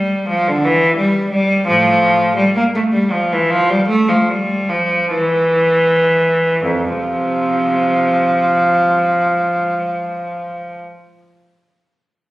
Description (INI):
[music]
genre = classical, baroque-style suite movement for unaccompanied cello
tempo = 37-60 BPM (dotted quarters)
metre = 6/8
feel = rubato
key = F major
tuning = A4 = 440 Hz
[part]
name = rich cello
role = solo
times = 0.0-10.8 s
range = F2 to Bb3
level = -13 LUFS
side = equal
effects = none
[sound]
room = moderate recital hall reverb, RT60 1.2 s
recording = recorded on a phone in the room, club reverb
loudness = -13 LUFS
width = side -17 dB against mid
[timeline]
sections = 0.0-6.6 A section; 6.6-12.3 B section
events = slowing down 0.6-6.6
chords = none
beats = 0.63 | 1.66 2.72 | 3.87 5.12 | 6.65 8.18 | 9.72